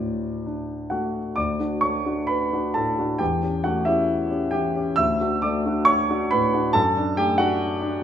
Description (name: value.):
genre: classical, romantic character piece for solo piano.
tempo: 66 BPM.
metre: 2/4.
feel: rubato.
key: D major.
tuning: A4 = 444 Hz.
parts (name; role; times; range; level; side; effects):
warm grand piano; solo; 0.0-8.0 s; D2 to E6; -20 LUFS; equal; none.
room: wet recital hall reverb, RT60 1.5 s.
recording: minimal, uncompressed stereo recording.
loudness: -20 LUFS.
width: side -9 dB against mid.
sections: 0.0-1.4 A section; 1.4-8.0 B section.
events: none.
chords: 0.0 D; 3.2 A7/E; 5.0 D; 6.8 D/F#.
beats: 0.46 | 1.37 2.29 | 3.20 4.10 | 4.98 5.88 | 6.76 7.62.